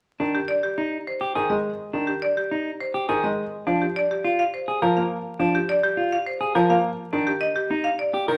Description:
classical, minimalist pattern music; 104 BPM; 3/4; straight; A4 = 440 Hz
bright baby grand piano; accompaniment; 0.2-8.4 s; Eb3 to Bb3; -26 LUFS; equal
clean electric guitar; arpeggios; 0.2-8.4 s; D4 to Bb4; -28 LUFS; equal
marimba with hard mallets; melody; 0.3-8.2 s; G4 to F5; -28 LUFS; equal
moderate large studio reverb, RT60 1.1 s; vinyl crackle; -24 LUFS; mono
0.1-8.4 A section
0.1 Ebmaj7; 3.5 Bb6; 7.0 Ebmaj7
| 0.06 0.64 1.21 | 1.79 2.37 2.94 | 3.52 4.10 4.67 | 5.25 5.83 6.41 | 6.98 7.56 8.14

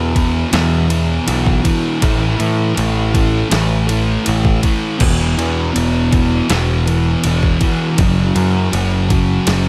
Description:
rock, shoegaze and dream pop; 80 BPM; 4/4; straight; A4 = 439 Hz
thick fuzz guitar; riff; 0.0-9.7 s; E2 to A3; -19 LUFS; equal; distortion, subtle chorus
growling picked electric bass; bass; 0.0-9.7 s; E1 to A2; -19 LUFS; equal; overdrive
detuned 8-bit digital drum machine; drums; 0.2-9.6 s; crash cymbal, kick drum, ride cymbal, snare drum; -22 LUFS; equal
light reverb; -15 LUFS; mono
0.0-9.7 A section
0.0 E5; 2.0 A5; 5.0 E5; 8.0 F#5
0.53 1.27 | 2.02 2.77 3.51 4.26 | 5.00 5.75 6.49 7.24 | 7.98 8.72 9.47

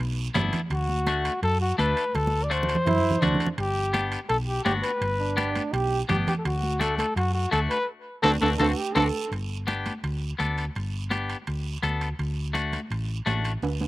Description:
latin, cumbia; 167 BPM; 4/4; straight; G major; A4 = 439 Hz
hollow-body short-scale fingered electric bass; bass; 0.0-13.9 s; G1 to F#2; -28 LUFS; equal
clean electric guitar; accompaniment; 0.3-13.5 s; A3 to A4; -28 LUFS; left 4 dB
guiro; percussion; 0.3-13.9 s; -41 LUFS; right 7 dB; slapback echo
congas; percussion; 0.4-13.9 s; -31 LUFS; right 1 dB
timbales; percussion; 0.4-13.9 s; -31 LUFS; right 4 dB; slapback echo
breathy trumpet; melody; 0.7-9.0 s; F#4 to D5; -27 LUFS; left 1 dB; slapback echo
clear trombone; second line; 2.9-6.0, 8.2-9.3 s; D4 to A4; -29 LUFS; right 4 dB; slapback echo
little or no reverb; recorded outdoors, with no room sound; -23 LUFS; side -17 dB against mid
0.0-9.3 A section; 9.3-13.9 B section
drum fill 2.1-3.6, 8.6-9.3, 13.6; band accent 7.9-9.3
0.0 G; 0.7 D7; 3.6 G; 6.5 D7; 9.3 G; 12.2 D
0.35 | 0.71 1.07 1.43 1.79 | 2.15 2.51 2.87 3.22 | 3.58 3.94 4.30 4.66 | 5.02 5.38 5.73 6.09 | 6.45 6.81 7.17 7.53 | 7.88 8.24 8.60 8.96 | 9.32 9.68 10.04 10.39 | 10.76 11.11 11.47 11.83 | 12.19 12.55 12.91 13.27 | 13.63

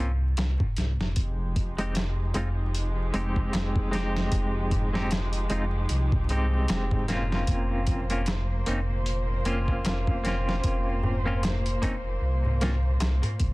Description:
trip hop; 76 BPM; 4/4; swing 57% on 16ths; F minor; A4 = 439 Hz
semi-hollow electric guitar; accompaniment; 0.0-12.8 s; Ab3 to G4; -32 LUFS; equal; tremolo, tape echo
dark detuned saw bass; bass; 0.0-13.5 s; F1 to C2; -27 LUFS; equal
dusty soul sampler-style drum kit; drums; 0.4-13.5 s; hi-hat, kick drum, snare drum; -29 LUFS; equal; overdrive
darbuka; percussion; 0.4-13.4 s; -34 LUFS; equal
muted chamber string section; sustained chords; 1.2-13.5 s; Bb2 to C5; -35 LUFS; equal; vintage 12-bit sampler grit
digital ambience; dense, heavily limited modern master, vinyl crackle; -24 LUFS; side -22 dB against mid
0.0-13.5 A section
0.0 Bbsus2 (rootless); 1.2 Fm9; 7.5 Bbmadd9/F
0.38 | 1.17 1.96 2.75 3.54 | 4.33 5.12 5.91 6.70 | 7.49 8.28 9.06 9.85 | 10.64 11.43 12.22 13.01

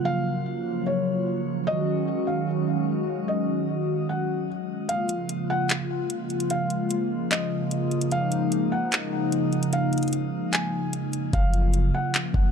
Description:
hip hop, atmospheric cloud-rap; 149 BPM; 4/4; half-time; Bb minor; A4 = 440 Hz
hollow soft pad; sustained chords; 0.0-12.5 s; Db3 to Gb4; -25 LUFS; equal; chorus, sidechain pumping
felt-muted upright piano; melody; 0.1-12.1 s; Db5 to Ab5; -31 LUFS; left 1 dB; ping-pong delay
smooth R&B drum kit; drums; 4.9-12.4 s; handclaps, hi-hat, kick drum; -27 LUFS; equal
warm 808-style bass; bass; 11.3-12.5 s; Gb1; -22 LUFS; equal
digital ambience; dark, warm production; -23 LUFS; side -7 dB against mid
0.0-12.5 A section
kick muted 4.9-11.3
0.0 Gbmaj7; 1.7 Ab7sus4; 4.9 Bbm7; 11.3 Gbmaj7
| 0.06 0.46 0.86 1.27 | 1.67 2.07 2.48 2.88 | 3.28 3.68 4.09 4.49 | 4.89 5.29 5.70 6.10 | 6.50 6.91 7.31 7.71 | 8.11 8.52 8.92 9.32 | 9.72 10.13 10.53 10.93 | 11.34 11.74 12.14

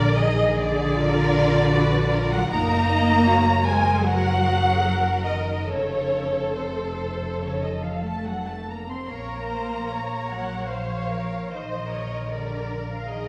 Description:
classical, slow romantic movement for string orchestra; 69-79 BPM; 4/4; rubato; A4 = 439 Hz
rich studio violin section; melody; 0.0-13.3 s; Ab4 to Eb5; -36 LUFS; equal
warm studio violin section; second line; 0.0-13.3 s; C5 to C6; -28 LUFS; equal
rich studio viola section; accompaniment; 0.0-13.3 s; Eb4 to Db5; -33 LUFS; equal
rich studio double bass section; bass; 0.0-13.3 s; F1 to Bb1; -29 LUFS; equal
warm studio cello section; bass; 0.0-13.3 s; C3 to C4; -29 LUFS; equal
wet recital hall reverb, RT60 1.7 s; recorded in a church or concert hall; -23 LUFS; mono
0.0-13.3 A section
0.0 Bb7; 2.5 Ebm/Gb; 5.7 F; 9.1 Bbm; 12.3 Bb7
0.17 0.96 1.73 | 2.50 3.27 4.04 4.85 | 5.69 6.55 7.39 8.24 | 9.08 9.90 10.70 11.50 | 12.29 13.08

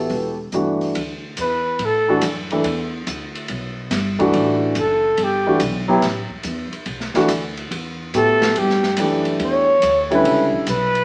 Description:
modal jazz; 142 BPM; 4/4; swing 68% on 8ths; A mixolydian; A4 = 440 Hz
mellow trumpet; melody; 0.0-2.2, 4.8-11.0 s; G4 to C#5; -20 LUFS; equal
breathy trombone; second line; 0.0-0.5 s; E3; -31 LUFS; equal
warm grand piano; accompaniment; 0.0-10.6 s; D3 to A4; -21 LUFS; equal
upright bass; bass; 0.0-11.0 s; E1 to A2; -29 LUFS; equal
open jazz drum kit; drums; 0.1-11.0 s; hi-hat, kick drum, ride cymbal, snare drum; -31 LUFS; equal
wet studio reverb, RT60 0.9 s; heard from further back in the room, small speaker sound; -20 LUFS; mono
1.0-11.0 A section
trumpet solo 1.0-11.0
0.0 A9sus4
0.10 0.53 | 0.95 1.37 1.80 2.22 | 2.64 3.06 3.49 3.91 | 4.33 4.75 5.18 5.60 | 6.02 6.45 6.87 7.29 | 7.71 8.13 8.56 8.98 | 9.40 9.82 10.25 10.67

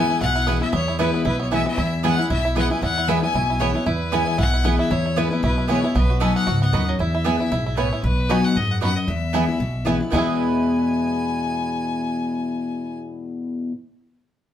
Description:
bluegrass; 230 BPM; 4/4; swing 56% on 8ths; E major; A4 = 439 Hz
bluegrass banjo; melody; 0.0-13.7 s; E3 to A4; -28 LUFS; right 4 dB
clear fiddle; melody; 0.0-13.0 s; B4 to G#5; -26 LUFS; left 2 dB
picked steel-string acoustic guitar; accompaniment; 0.0-13.7 s; E2 to F#4; -23 LUFS; left 3 dB
mandolin; stabs; 0.0-13.7 s; B3 to B5; -28 LUFS; right 8 dB
upright bass; bass; 0.0-13.7 s; B1 to F#2; -24 LUFS; equal
moderate large studio reverb, RT60 0.8 s; band playing live in one room; -19 LUFS; side -10 dB against mid
0.0-8.0 A section; 8.0-10.1 B section; 10.1-12.2 C section
0.0 E; 6.0 B; 7.0 E; 8.0 B; 9.1 E
0.21 0.47 | 0.73 0.99 1.25 1.52 | 1.78 2.04 2.30 2.56 | 2.82 3.08 3.34 3.60 | 3.87 4.13 4.39 4.65 | 4.91 5.17 5.43 5.69 | 5.95 6.21 6.47 6.73 | 6.99 7.25 7.51 7.77 | 8.04 8.30 8.56 8.82 | 9.08 9.34 9.60 9.86 | 10.12 10.38 10.64 10.91 | 11.17 11.43 11.69 11.95

